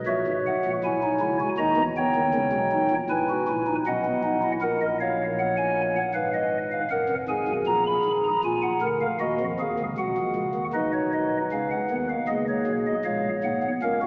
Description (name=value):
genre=classical, baroque-style 4-part fugue for pipe organ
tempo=78 BPM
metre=4/4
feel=straight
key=unclear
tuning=A4 = 441 Hz
part: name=pipe organ, stopped flute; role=solo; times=0.0-14.1 s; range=F1 to B5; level=-25 LUFS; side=equal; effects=none
room=wet cathedral reverb, RT60 5.3 s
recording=recorded in a church or concert hall, small speaker sound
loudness=-25 LUFS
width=mono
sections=0.0-10.7 A section; 10.7-14.1 B section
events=none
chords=0.1 A#dim; 1.6 D#7; 3.1 G#m; 4.6 D#m/A# (rootless); 6.2 Fdim/Ab; 7.7 A#7; 9.2 D#m; 10.7 Badd9; 12.3 C#